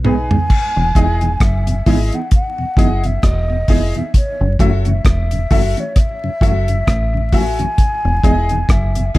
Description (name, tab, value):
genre	roots reggae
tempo	66 BPM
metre	4/4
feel	swing 57% on 16ths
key	E major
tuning	A4 = 444 Hz
part	mellow electric guitar	accompaniment	0.0-9.2 s	E3 to G#4	-24 LUFS	right 3 dB	tape echo
part	clear upright piano	stabs	0.0-9.2 s	D#4 to E5	-24 LUFS	left 3 dB	none
part	deep dub fingered electric bass	bass	0.0-9.2 s	E1 to B1	-17 LUFS	equal	none
part	deep reggae drum kit	drums	0.0-9.2 s	crash cymbal, hi-hat, kick drum, rim click, toms	-14 LUFS	equal	none
part	breathy mellow silver concert flute	melody	0.1-9.1 s	C#5 to G#5	-22 LUFS	left 1 dB	tape echo
part	mellow tonewheel organ	accompaniment	0.1-9.2 s	E2 to E4	-24 LUFS	left 2 dB	slow rotary speaker
room	light reverb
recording	vinyl crackle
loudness	-13 LUFS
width	side -18 dB against mid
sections	0.5-9.2 A section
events	drum fill 0.0-0.5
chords	0.5 Emaj7; 4.1 F#m7; 7.8 Emaj7